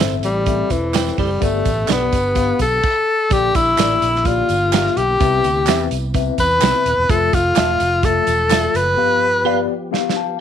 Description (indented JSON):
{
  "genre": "uptempo 1960s-style soul",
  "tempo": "127 BPM",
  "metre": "4/4",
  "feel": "straight",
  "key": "unclear",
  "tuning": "A4 = 440 Hz",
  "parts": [
    { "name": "mellow tine electric piano", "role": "accompaniment", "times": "0.0-10.4 s", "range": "G2 to A5", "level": "-24 LUFS", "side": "left 14 dB", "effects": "medium stereo tremolo" },
    { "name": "percussive tonewheel organ", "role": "sustained chords", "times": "0.0-10.4 s", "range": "C3 to A4", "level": "-31 LUFS", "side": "right 1 dB", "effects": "fast rotary speaker, chorus vibrato" },
    { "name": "clean electric guitar", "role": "stabs", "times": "0.0-9.6 s", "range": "D4 to F5", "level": "-24 LUFS", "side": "right 15 dB", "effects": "ensemble chorus" },
    { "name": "fingered electric bass", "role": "bass", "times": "0.0-8.9 s", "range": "Eb1 to E2", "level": "-23 LUFS", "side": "right 1 dB", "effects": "none" },
    { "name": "warm soul drum kit", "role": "drums", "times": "0.0-10.2 s", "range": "crash cymbal, hi-hat, kick drum, snare drum", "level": "-20 LUFS", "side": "right 4 dB", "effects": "none" },
    { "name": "breathy tenor saxophone", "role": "melody", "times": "0.2-9.7 s", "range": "E3 to B4", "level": "-16 LUFS", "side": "left 2 dB", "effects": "none" },
    { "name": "tambourine and handclaps", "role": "percussion", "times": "0.2-8.9 s", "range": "none", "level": "-30 LUFS", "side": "right 15 dB", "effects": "none" }
  ],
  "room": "light reverb",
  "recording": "1960s-style stereo with parts hard left and right",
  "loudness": "-14 LUFS",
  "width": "side -9 dB against mid",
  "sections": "0.0-3.3 A section; 3.3-10.4 B section",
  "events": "drum fill 9.9-10.4",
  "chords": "0.0 Am; 1.4 G; 3.3 Bb6; 5.2 Cmaj7; 7.1 Fmaj7; 9.0 G7"
}